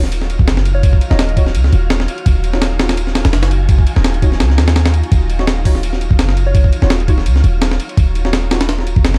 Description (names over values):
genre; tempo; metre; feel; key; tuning
drum and bass, jungle; 168 BPM; 4/4; swing 54% on 16ths; Eb minor; A4 = 442 Hz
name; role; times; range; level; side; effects
granular cloud pad; sustained chords; 0.0-9.2 s; Eb4 to F5; -31 LUFS; equal; built-in reverb
warm 808-style bass; bass; 0.0-9.2 s; Eb1 to Eb2; -16 LUFS; equal; none
breakbeat sampler-style drum kit; drums; 0.0-9.2 s; hi-hat, kick drum, ride cymbal, snare drum; -17 LUFS; equal; none
wind-like tuned noise texture; texture; 0.1-9.2 s; F5 to F6; -34 LUFS; equal; built-in reverb
soft struck synth lead; melody; 0.7-1.5, 6.5-6.7 s; Db5 to Eb5; -29 LUFS; equal; chorus, dub echo
deep mellow chord stab; stabs; 1.1-8.6 s; Eb4 to Db5; -29 LUFS; equal; chorus, cassette tape, dub echo
room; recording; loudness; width
little or no reverb; dark, warm production; -14 LUFS; mono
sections
0.0-9.2 A section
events
none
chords
0.0 Ebm9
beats
0.12 0.47 | 0.83 1.19 1.55 1.90 | 2.26 2.62 2.98 3.33 | 3.69 4.05 4.40 4.76 | 5.12 5.47 5.83 6.19 | 6.55 6.90 7.26 7.62 | 7.97 8.33 8.69 9.05